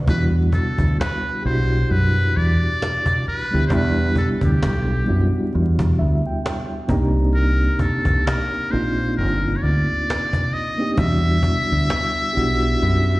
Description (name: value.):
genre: R&B, neo-soul.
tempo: 66 BPM.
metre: 4/4.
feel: swing 58% on 16ths.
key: E minor.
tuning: A4 = 441 Hz.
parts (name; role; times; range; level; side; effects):
mellow reed electric piano; accompaniment; 0.0-13.2 s; B2 to Bb5; -24 LUFS; right 1 dB; fast tremolo, slapback echo.
trumpet with metal mute; melody; 0.1-13.2 s; G4 to E5; -24 LUFS; left 1 dB; slapback echo.
deep dub fingered electric bass; bass; 0.1-13.2 s; G1 to F#2; -18 LUFS; equal; none.
cajon; drums; 0.1-12.9 s; none; -23 LUFS; equal; slapback echo.
room: little or no reverb.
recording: live gig heard through the venue's PA, recital hall reverb, vinyl crackle, nothing above 10.5 kHz.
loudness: -17 LUFS.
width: side -19 dB against mid.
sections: 0.1-13.2 A section.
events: reed electric piano fill 5.5-7.3; kick muted 12.8-13.2.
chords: 0.1 Em9; 6.9 Cm9; 11.0 Em9.